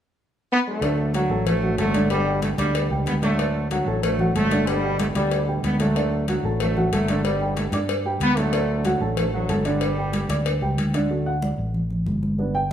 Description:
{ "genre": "latin, salsa", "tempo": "187 BPM", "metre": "4/4", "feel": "straight", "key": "D major", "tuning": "A4 = 440 Hz", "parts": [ { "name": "clear trombone section", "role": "melody", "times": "0.5-10.6 s", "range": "A2 to B3", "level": "-25 LUFS", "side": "equal", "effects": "none" }, { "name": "dark upright piano", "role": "accompaniment", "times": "0.8-12.7 s", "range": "D3 to D6", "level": "-27 LUFS", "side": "right 1 dB", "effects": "none" }, { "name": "fingered electric bass", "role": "bass", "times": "0.8-12.7 s", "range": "G1 to G2", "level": "-26 LUFS", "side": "equal", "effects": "none" }, { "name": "congas", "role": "percussion", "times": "0.8-12.7 s", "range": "none", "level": "-27 LUFS", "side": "equal", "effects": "none" }, { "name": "cowbell", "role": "percussion", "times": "0.8-11.1 s", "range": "none", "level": "-30 LUFS", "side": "left 4 dB", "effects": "none" } ], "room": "moderate large studio reverb, RT60 1.1 s", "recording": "band playing live in one room", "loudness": "-20 LUFS", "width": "side -10 dB against mid", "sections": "0.8-11.1 A section; 11.1-12.7 B section", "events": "upright piano solo 11.1-12.7", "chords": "0.0 N.C.; 0.8 D; 2.1 G; 3.4 D; 4.7 G; 6.0 D; 7.2 G; 8.5 D; 9.8 G; 11.1 D" }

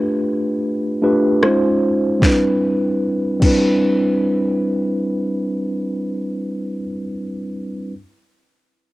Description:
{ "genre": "contemporary R&B", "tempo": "75 BPM", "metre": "4/4", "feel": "straight", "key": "C major", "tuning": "A4 = 440 Hz", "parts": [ { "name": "mellow tine electric piano", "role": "accompaniment", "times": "0.0-7.9 s", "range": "G3 to C5", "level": "-17 LUFS", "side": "equal", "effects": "medium stereo tremolo, cassette tape" }, { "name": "smooth R&B drum kit", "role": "drums", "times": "1.4-3.6 s", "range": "crash cymbal, kick drum, rim click, snare drum", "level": "-17 LUFS", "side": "equal", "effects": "none" } ], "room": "little or no reverb", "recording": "home recording on cassette", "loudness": "-16 LUFS", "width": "side -18 dB against mid", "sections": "0.0-2.2 A section; 2.2-5.4 B section", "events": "none", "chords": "0.0 G9; 1.4 Dbmaj9; 2.2 Cmaj9" }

